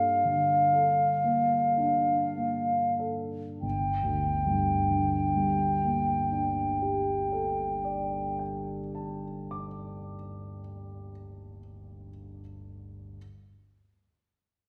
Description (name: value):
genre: classical, impressionist duo for flute and grand piano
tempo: 30-42 BPM (dotted quarters)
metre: 12/8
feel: rubato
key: G minor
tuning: A4 = 443 Hz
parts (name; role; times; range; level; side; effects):
- mellow concert flute; melody; 0.0-8.4 s; F5 to G5; -29 LUFS; equal; none
- dark baby grand piano; accompaniment; 0.0-13.2 s; G1 to D6; -34 LUFS; equal; none
room: wet recital hall reverb, RT60 1.4 s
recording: heard from further back in the room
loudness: -28 LUFS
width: mono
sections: 0.0-3.6 A section; 3.6-10.9 B section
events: slowing down 0.0-3.6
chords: 0.0 Gmadd9